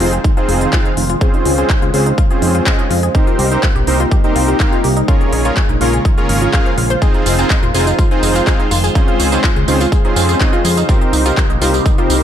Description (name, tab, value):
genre	progressive house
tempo	124 BPM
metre	4/4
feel	straight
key	F minor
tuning	A4 = 440 Hz
part	evolving wavetable pad	sustained chords	0.0-12.2 s	C3 to C5	-21 LUFS	equal	phaser, built-in reverb, sidechain pumping
part	analog pluck	arpeggios	0.0-12.1 s	Eb4 to F5	-21 LUFS	left 3 dB	chorus, sidechain pumping, ping-pong delay
part	soft supersaw	stabs	0.0-12.2 s	C4 to F5	-18 LUFS	right 2 dB	cassette tape, sidechain pumping, ping-pong delay
part	fat analog bass	bass	0.0-12.2 s	Eb1 to F2	-16 LUFS	equal	sidechain pumping
part	big-room dance drum kit	drums	0.0-12.2 s	handclaps, hi-hat, tambourine	-21 LUFS	equal	none
part	electronic kick drum	drums	0.2-12.0 s	none	-14 LUFS	equal	none
room	digital ambience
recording	none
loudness	-11 LUFS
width	side -10 dB against mid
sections	0.0-12.2 A section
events	filter sweep on synth pluck 0.0-12.2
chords	0.0 Fm7; 1.2 Dbmaj7; 3.1 Cm7; 5.1 Bbm7; 7.0 Fm7; 9.0 Dbmaj7; 10.9 Cm7